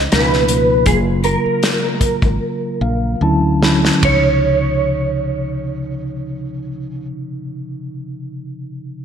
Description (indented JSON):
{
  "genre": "R&B, neo-soul",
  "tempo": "71-82 BPM",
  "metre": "4/4",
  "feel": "swing 53% on 16ths",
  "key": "Db major",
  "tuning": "A4 = 439 Hz",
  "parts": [
    { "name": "mellow tine electric piano", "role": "accompaniment", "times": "0.0-9.0 s", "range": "Cb3 to Cb6", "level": "-20 LUFS", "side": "equal", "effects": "fast stereo tremolo" },
    { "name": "woody fretless electric bass", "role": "bass", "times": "0.0-7.1 s", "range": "Gb1 to D2", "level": "-21 LUFS", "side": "equal", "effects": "none" },
    { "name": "electric guitar through a small old amp", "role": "melody", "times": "0.1-7.1 s", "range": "Ab4 to Db5", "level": "-18 LUFS", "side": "right 2 dB", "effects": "ensemble chorus, ping-pong delay" },
    { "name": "warm soul drum kit", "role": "drums", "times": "0.1-4.2 s", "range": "hi-hat, kick drum, ride cymbal, snare drum", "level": "-18 LUFS", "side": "equal", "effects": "gated reverb" }
  ],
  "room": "moderate plate reverb, RT60 2.2 s",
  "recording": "bright 1980s-style digital production",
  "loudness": "-14 LUFS",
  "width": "side -8 dB against mid",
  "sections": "0.0-4.0 A section; 4.0-7.4 B section",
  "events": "slowing down 0.0-4.0; drum fill 2.4-4.0; tine electric piano fill 2.4-4.0",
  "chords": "0.1 Db13; 0.9 Gbmaj7; 3.2 Dmaj9; 4.0 Dbmaj9"
}